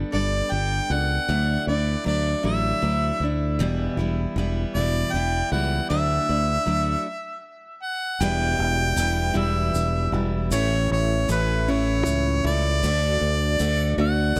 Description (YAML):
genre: folk rock and heartland rock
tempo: 52 BPM (dotted quarters)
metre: 6/8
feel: straight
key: E dorian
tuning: A4 = 443 Hz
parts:
  - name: picked steel-string acoustic guitar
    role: accompaniment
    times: 0.0-14.4 s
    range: E2 to A4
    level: -29 LUFS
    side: equal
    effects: none
  - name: fingered electric bass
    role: bass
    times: 0.0-14.4 s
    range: E1 to D2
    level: -27 LUFS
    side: equal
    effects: none
  - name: clear harmonica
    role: melody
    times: 0.1-14.4 s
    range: B4 to G5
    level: -28 LUFS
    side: equal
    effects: tape echo
  - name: mellow tonewheel organ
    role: sustained chords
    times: 8.2-14.4 s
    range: G3 to E5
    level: -38 LUFS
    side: equal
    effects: none
  - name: tube shaker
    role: percussion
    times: 8.2-14.4 s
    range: none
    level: -38 LUFS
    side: equal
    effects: none
room: light reverb, small room ambience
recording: none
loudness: -23 LUFS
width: mono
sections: 0.0-8.2 A section; 8.2-14.4 B section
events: stop 7.1-8.2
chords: 0.0 Gadd9; 1.3 Dadd9; 3.6 Em; 5.9 Dadd9; 8.2 Em; 10.5 A; 12.8 D